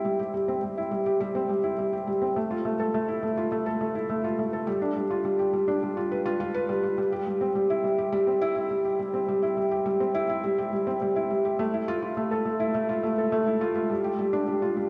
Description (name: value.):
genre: electronica.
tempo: 104 BPM.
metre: 4/4.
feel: straight.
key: unclear.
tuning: A4 = 440 Hz.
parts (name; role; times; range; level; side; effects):
felt-muted upright piano; solo; 0.0-14.9 s; G3 to B4; -27 LUFS; equal; delay.
room: wet plate reverb, RT60 3.5 s.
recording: dreamy mix soaked in reverb, nothing above 10.4 kHz.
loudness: -27 LUFS.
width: mono.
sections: 0.0-14.9 A section.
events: build-up 0.0-14.9.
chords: none.